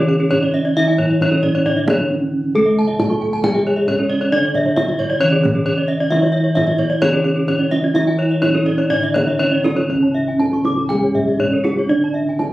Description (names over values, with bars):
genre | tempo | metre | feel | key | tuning
Balinese gamelan | 120-134 BPM | 4/4 | straight | C# pelog | A4 = 437 Hz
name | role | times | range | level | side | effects
gamelan-type bronze metallophone | melody | 0.0-12.5 s | A3-20c to A4-20c | -21 LUFS | right 1 dB | none
gamelan-type bronze metallophone | accompaniment | 0.0-12.5 s | C#3 to A3-20c | -25 LUFS | equal | none
gamelan-type bronze metallophone | arpeggios | 0.0-12.4 s | G#4-30c to C#6 | -26 LUFS | right 1 dB | none
gamelan-type bossed gongs | bass | 0.0-12.5 s | C#2 to A4-20c | -20 LUFS | equal | none
gamelan-type bronze metallophone | arpeggios | 0.1-12.5 s | G#4-30c to D6+20c | -20 LUFS | left 1 dB | none
kendang | percussion | 0.2-12.5 s | none | -24 LUFS | right 1 dB | none
room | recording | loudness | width
light reverb | recorded on a phone in the room, club reverb, compression | -14 LUFS | side -16 dB against mid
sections
0.0-9.9 A section; 9.9-12.5 B section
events
break 1.9-2.5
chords
none